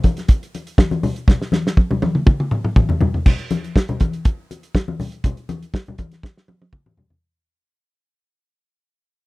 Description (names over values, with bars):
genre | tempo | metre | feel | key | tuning
disco | 121 BPM | 4/4 | straight | none | none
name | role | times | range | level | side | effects
warm soul drum kit | drums | 0.0-7.2 s | crash cymbal, hi-hat, kick drum, snare drum, toms | -15 LUFS | equal | none
congas | percussion | 0.0-7.1 s | none | -23 LUFS | left 3 dB | none
room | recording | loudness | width
little or no reverb | dry, close 1970s-style studio recording | -17 LUFS | side -21 dB against mid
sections
0.0-3.3 A section; 3.3-7.2 B section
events
drum fill 1.3-3.3, 6.2-7.2; fade-out 3.3-7.2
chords
none